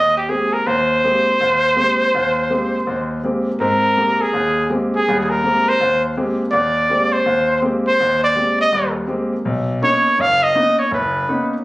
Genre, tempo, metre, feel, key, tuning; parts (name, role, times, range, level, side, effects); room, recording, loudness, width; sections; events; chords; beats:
jazz; 164 BPM; 4/4; swing 63% on 8ths; A4 = 441 Hz
breathy trumpet; melody; 0.0-11.5 s; G4 to F5; -15 LUFS; equal
clear grand piano; accompaniment; 0.0-11.5 s; F#1 to G4; -20 LUFS; equal
moderate studio ambience, RT60 0.5 s; recorded on a phone in the room, club reverb; -15 LUFS; side -19 dB against mid
0.0-3.6 A section; 3.6-11.6 B section
0.0 Abmaj9; 9.4 Bmaj9
0.29 | 0.66 1.03 1.40 1.76 | 2.13 2.50 2.86 3.23 | 3.60 3.96 4.33 4.69 | 5.06 5.43 5.79 6.16 | 6.52 6.89 7.25 7.62 | 7.99 8.35 8.72 9.08 | 9.45 9.82 10.18 10.55 | 10.91 11.28